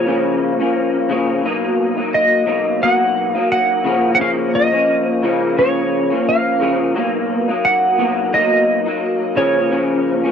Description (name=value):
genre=indie pop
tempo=87 BPM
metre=4/4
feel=swing 55% on 16ths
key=unclear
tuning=A4 = 439 Hz
part: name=clean lap steel guitar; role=melody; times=0.0-10.3 s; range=C#5 to F#5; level=-16 LUFS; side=right 1 dB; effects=analog chorus
part: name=electric guitar through a small old amp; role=accompaniment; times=0.0-10.3 s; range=B2 to D#4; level=-17 LUFS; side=left 2 dB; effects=ensemble chorus, vibrato effect
room=light reverb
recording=dry, close 1970s-style studio recording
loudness=-14 LUFS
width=side -7 dB against mid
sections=0.0-10.3 A section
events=none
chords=0.0 C#6; 1.4 Bmaj7; 3.9 C#69; 7.0 Bmaj7; 9.4 C#6